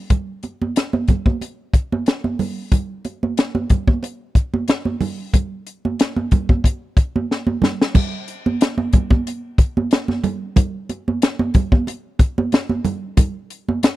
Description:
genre	soul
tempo	92 BPM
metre	4/4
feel	swing 54% on 16ths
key	none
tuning	none
part	compact cocktail drum kit	drums	0.1-14.0 s	crash cymbal, hi-hat, kick drum, snare drum	-15 LUFS	left 1 dB	none
part	congas	percussion	0.1-14.0 s	none	-21 LUFS	right 4 dB	none
room	small room reverb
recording	dry, close 1970s-style studio recording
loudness	-17 LUFS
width	side -16 dB against mid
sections	0.0-8.0 A section; 8.0-14.0 B section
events	drum fill 7.3-8.0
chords	none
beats	| 0.11 0.76 1.41 2.07 | 2.72 3.38 4.03 4.68 | 5.34 5.99 6.64 7.30 | 7.95 8.61 9.26 9.91 | 10.56 11.22 11.87 12.52 | 13.18 13.83

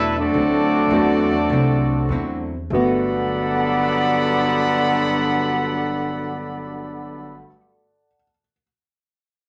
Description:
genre	jazz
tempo	95-108 BPM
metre	4/4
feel	swing 68% on 8ths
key	G major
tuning	A4 = 440 Hz
part	bright trumpet section	melody	0.0-7.4 s	C4 to B5	-25 LUFS	equal	none
part	mellow trombone section	second line	0.0-7.4 s	G2 to E4	-24 LUFS	equal	none
part	archtop guitar, miked and amplified	accompaniment	0.0-7.6 s	B2 to A4	-31 LUFS	equal	none
part	upright bass	bass	0.0-7.4 s	G1 to E2	-29 LUFS	equal	none
part	warm grand piano	accompaniment	0.9-8.6 s	G2 to A6	-28 LUFS	equal	none
room	wet studio reverb, RT60 0.7 s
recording	none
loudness	-20 LUFS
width	mono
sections	0.0-2.7 A section; 2.7-7.7 B section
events	slowing down 0.0-2.7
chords	0.4 D9; 2.7 Gmaj9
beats	| 0.35 0.92 1.50 2.10 | 2.71 3.34 3.97 4.59 | 5.22 5.85 6.48 7.11

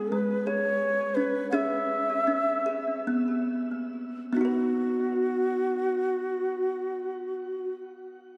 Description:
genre	world meditative, meditative tuned percussion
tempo	134-176 BPM (eighths)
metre	7/8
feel	straight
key	B major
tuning	A4 = 441 Hz
part	mellow Native American-style cedar flute	melody	0.0-7.7 s	F#4 to F#5	-30 LUFS	equal	shimmer reverb
part	kalimba	arpeggios	0.0-7.8 s	G#3 to B4	-32 LUFS	equal	shimmer reverb, delay
room	wet church reverb, RT60 3.1 s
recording	dark, warm production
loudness	-28 LUFS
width	mono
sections	0.0-4.3 A section; 4.3-7.5 B section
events	slowing down 0.0-4.3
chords	0.0 C#m; 4.3 B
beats	0.11 0.46 0.81 1.16 | 1.52 1.89 2.27 2.66 3.05 3.46 3.89 | 4.33 4.77 5.22 5.67 6.12 6.56 7.01

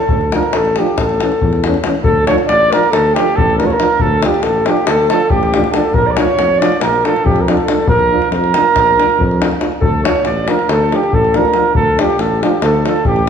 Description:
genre	balkan folk, Balkan brass band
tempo	278 BPM (eighths)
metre	9/8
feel	straight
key	unclear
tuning	A4 = 445 Hz
part	dark cornet	melody	0.0-13.3 s	G4 to D5	-15 LUFS	right 3 dB	none
part	mellow clarinet	second line	0.0-13.3 s	G4 to D5	-19 LUFS	left 3 dB	none
part	mellow tuba	bass	0.1-13.3 s	A1 to F2	-20 LUFS	equal	none
part	davul	percussion	0.1-13.2 s	none	-18 LUFS	left 2 dB	none
part	clear trombone	accompaniment	0.3-12.9 s	E3 to F3	-23 LUFS	right 6 dB	none
part	warm euphonium	accompaniment	0.3-12.9 s	C#4 to D4	-22 LUFS	left 4 dB	none
room	wet recital hall reverb, RT60 1.5 s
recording	recorded in a church or concert hall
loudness	-11 LUFS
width	side -7 dB against mid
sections	0.0-2.0 A section; 2.0-13.3 B section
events	none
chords	0.1 Dm; 1.0 A; 2.0 Dm; 5.9 Bb; 9.8 Dm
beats	| 0.10 0.32 0.53 0.75 0.97 1.18 1.40 1.62 1.83 | 2.05 2.27 2.48 2.70 2.92 3.13 3.35 3.56 3.78 | 4.00 4.21 4.43 4.64 4.86 5.08 5.29 5.51 5.72 | 5.94 6.15 6.37 6.58 6.80 7.02 7.23 7.45 7.66 | 7.88 8.09 8.31 8.53 8.74 8.96 9.17 9.39 9.60 | 9.82 10.03 10.25 10.46 10.68 10.89 11.11 11.32 11.54 | 11.75 11.97 12.18 12.40 12.61 12.83 13.04 13.26

